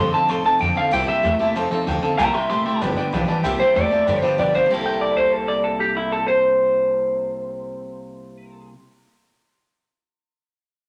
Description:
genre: rockabilly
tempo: 190 BPM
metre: 4/4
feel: straight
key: C mixolydian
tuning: A4 = 440 Hz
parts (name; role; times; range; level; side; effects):
- electric guitar through a small old amp; melody; 0.0-8.7 s; E4 to C6; -21 LUFS; equal; none
- clear upright piano; accompaniment; 0.0-8.7 s; B4 to A5; -31 LUFS; equal; none
- picked steel-string acoustic guitar; accompaniment; 0.0-8.8 s; G2 to A4; -30 LUFS; equal; none
- electric guitar at the edge of break-up; riff; 0.0-8.7 s; F2 to A4; -30 LUFS; equal; spring reverb
- upright bass; bass; 0.0-8.7 s; G1 to B2; -32 LUFS; equal; none
room: moderate large studio reverb, RT60 1.1 s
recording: none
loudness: -20 LUFS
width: mono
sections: 0.0-3.4 A section; 3.4-4.7 B section; 4.7-7.2 C section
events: upright piano fill 3.0-3.4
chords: 0.0 F7; 0.9 C7; 1.6 F7; 2.2 C7; 2.8 G7; 3.4 C7; 4.1 G7; 4.7 C6

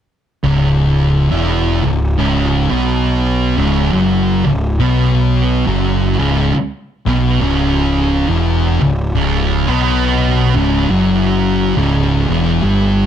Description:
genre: metal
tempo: 69 BPM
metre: 4/4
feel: swing 60% on 8ths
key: C# minor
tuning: A4 = 444 Hz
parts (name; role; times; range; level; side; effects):
- thick fuzz guitar; riff; 0.4-13.1 s; C#2 to B3; -18 LUFS; left 8 dB; distortion
- thick fuzz guitar; riff; 0.4-13.1 s; C#2 to B3; -16 LUFS; right 7 dB; distortion
- fuzz picked electric bass; bass; 0.4-13.1 s; C#1 to B1; -17 LUFS; equal; overdrive
room: light reverb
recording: dark, warm production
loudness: -12 LUFS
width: side -9 dB against mid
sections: 0.4-13.1 A section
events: none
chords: 0.4 C#m

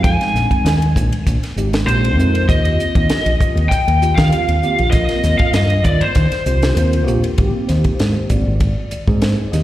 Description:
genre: electric jazz fusion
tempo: 98 BPM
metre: 4/4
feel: straight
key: unclear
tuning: A4 = 440 Hz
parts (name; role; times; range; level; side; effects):
- lead guitar through a small cranked amp; melody; 0.0-7.0 s; C5 to Ab5; -19 LUFS; left 1 dB; overdrive, slapback echo
- mellow tine electric piano; accompaniment; 0.0-9.6 s; G3 to Eb5; -23 LUFS; right 1 dB; medium stereo tremolo, analog chorus, slapback echo
- fingered electric bass; bass; 0.0-9.6 s; Ab1 to Eb3; -16 LUFS; equal; none
- tight funk drum kit; drums; 0.0-9.6 s; hi-hat, kick drum, ride cymbal, snare drum; -19 LUFS; equal; none
room: small room reverb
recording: live gig heard through the venue's PA, recital hall reverb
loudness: -13 LUFS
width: side -14 dB against mid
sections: 0.0-7.4 A section; 7.4-9.6 B section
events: none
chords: 0.0 Bb13sus4; 2.5 Eb6; 7.4 Abmaj9

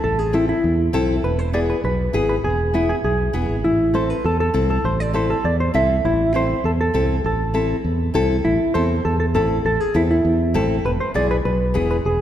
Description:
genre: latin, cumbia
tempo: 200 BPM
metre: 4/4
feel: straight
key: A harmonic minor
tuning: A4 = 442 Hz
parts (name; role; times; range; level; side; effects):
- hollow-body jazz guitar; melody; 0.0-12.2 s; E4 to E5; -21 LUFS; right 1 dB; none
- fingered electric bass; bass; 0.0-12.2 s; E1 to E2; -21 LUFS; equal; none
- nylon-string guitar; accompaniment; 0.3-12.0 s; B3 to A4; -24 LUFS; left 2 dB; none
room: wet concert hall reverb, RT60 2.3 s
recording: recorded in a church or concert hall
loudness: -17 LUFS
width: side -11 dB against mid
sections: 0.0-8.4 A section; 8.4-12.2 B section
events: none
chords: 0.0 Am; 1.2 E; 3.6 Am; 10.8 E

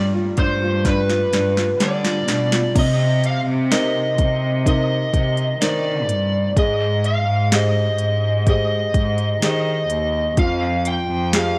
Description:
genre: pop ballad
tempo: 63 BPM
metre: 4/4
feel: straight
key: C minor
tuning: A4 = 440 Hz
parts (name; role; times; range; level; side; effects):
- lead guitar through a small cranked amp; melody; 0.0-11.6 s; B4 to G5; -24 LUFS; equal; overdrive
- felt-muted upright piano; accompaniment; 0.0-11.6 s; C3 to C5; -27 LUFS; equal; none
- rich studio cello section; bass; 0.0-11.6 s; Eb2 to Eb3; -24 LUFS; equal; none
- smooth R&B drum kit; drums; 0.4-11.6 s; crash cymbal, hi-hat, kick drum, snare drum; -24 LUFS; equal; overdrive
room: light reverb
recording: none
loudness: -19 LUFS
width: mono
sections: 0.0-2.8 A section; 2.8-11.6 B section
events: drum fill 0.9-2.8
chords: 0.0 G7; 2.8 Cm7; 6.6 Abmaj7; 10.4 Fmadd9

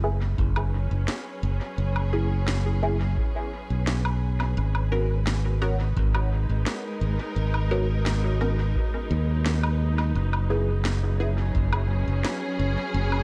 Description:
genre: ambient dub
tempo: 86 BPM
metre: 4/4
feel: straight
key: unclear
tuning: A4 = 441 Hz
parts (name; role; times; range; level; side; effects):
- dark studio string section; sustained chords; 0.0-13.2 s; F#3 to B4; -36 LUFS; equal; none
- filtered dub chord stab; stabs; 0.0-11.3 s; B3 to A#4; -35 LUFS; equal; phaser, analog chorus, dub echo
- modern bright fingered electric bass; bass; 0.0-13.2 s; F#1 to D#2; -26 LUFS; equal; none
- electronic kick drum; drums; 0.4-11.7 s; none; -31 LUFS; equal; none
- electronic woodblock and snare drum; drums; 0.6-13.2 s; none; -35 LUFS; equal; dub echo
room: digital ambience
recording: none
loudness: -25 LUFS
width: mono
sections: 0.0-13.2 A section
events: fade-in on string section 0.0-13.2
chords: 0.0 F#sus4; 4.6 G#madd9; 10.2 F#sus4

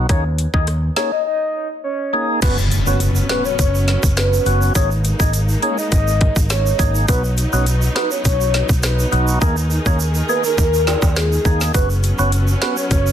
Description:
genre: dancehall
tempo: 103 BPM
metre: 4/4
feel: straight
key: unclear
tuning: A4 = 441 Hz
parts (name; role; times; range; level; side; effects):
- percussive tonewheel organ; accompaniment; 0.0-12.8 s; A#3 to G#4; -23 LUFS; right 1 dB; slow rotary speaker, sidechain pumping
- fretless electric bass; bass; 0.0-13.1 s; F#1 to D#2; -18 LUFS; equal; none
- soft octave-layered synth lead; melody; 0.1-13.1 s; G#4 to D#5; -22 LUFS; left 1 dB; chorus, phaser, tape echo
- island pop drum kit; drums; 0.1-13.1 s; crash cymbal, hi-hat, kick drum, rim click, snare drum; -19 LUFS; equal; overdrive
- dark studio string section; sustained chords; 2.4-13.1 s; D#3 to A#4; -27 LUFS; left 1 dB; sidechain pumping
- egg shaker and timbales; percussion; 2.4-13.1 s; none; -28 LUFS; right 5 dB; none
- impact; sound effects; 2.4-4.8 s; none; -26 LUFS; equal; none
room: digital ambience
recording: dense, heavily limited modern master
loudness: -15 LUFS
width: side -10 dB against mid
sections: 0.0-2.4 A section; 2.4-13.1 B section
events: break 1.3-2.4; impact 2.4-4.8; hi-hats muted 9.4-11.7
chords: 0.1 D#sus4; 2.4 F#sus4; 4.8 G#sus2; 7.1 B; 9.4 D#sus4; 11.7 F#sus4

